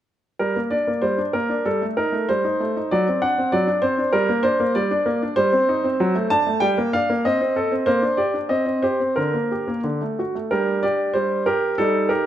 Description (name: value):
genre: classical-period piano sonatina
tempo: 96 BPM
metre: 2/4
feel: rubato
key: G minor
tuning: A4 = 442 Hz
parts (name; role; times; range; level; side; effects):
- clear baby grand piano; solo; 0.4-12.3 s; D3 to A5; -18 LUFS; equal; none
room: moderate recital hall reverb, RT60 1.7 s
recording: none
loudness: -18 LUFS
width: side -11 dB against mid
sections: 0.4-10.5 A section; 10.5-12.3 A section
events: none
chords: 0.4 Gm; 1.7 Am7b5/G; 2.9 D7/F#; 4.1 Gm; 5.4 Cm/G; 6.0 D7/F#; 6.6 Gm; 7.2 Adim/C; 7.9 Gm/Bb; 8.5 Cm; 9.2 Gm/D; 9.8 D; 10.5 G5